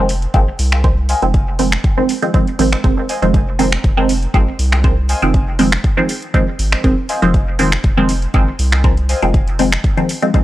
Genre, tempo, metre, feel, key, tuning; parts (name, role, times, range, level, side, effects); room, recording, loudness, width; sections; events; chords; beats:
dub techno; 120 BPM; 4/4; swing 53% on 16ths; F minor; A4 = 441 Hz
filtered dub chord stab; stabs; 0.0-10.4 s; Eb3 to C4; -17 LUFS; right 1 dB; phaser, sidechain pumping, dub echo
round analog bass; bass; 0.0-9.8 s; F1 to C2; -17 LUFS; equal; transformer saturation, sidechain pumping
deep house drum kit; drums; 0.1-10.4 s; finger snaps, hi-hat; -21 LUFS; equal; studio reverb
electronic kick drum; drums; 0.3-10.4 s; -14 LUFS; equal; studio reverb
warbly lo-fi synth keys; riff; 1.1-9.2 s; C5 to Ab5; -25 LUFS; left 2 dB; chorus, phaser, sidechain pumping, dub echo
digital ambience; dry, gritty hardware recording, cassette tape; -12 LUFS; side -15 dB against mid
0.0-10.4 A section
0.0 Fm7
0.34 | 0.84 1.34 1.84 2.34 | 2.84 3.34 3.84 4.34 | 4.84 5.34 5.84 6.34 | 6.84 7.34 7.84 8.34 | 8.84 9.34 9.84 10.34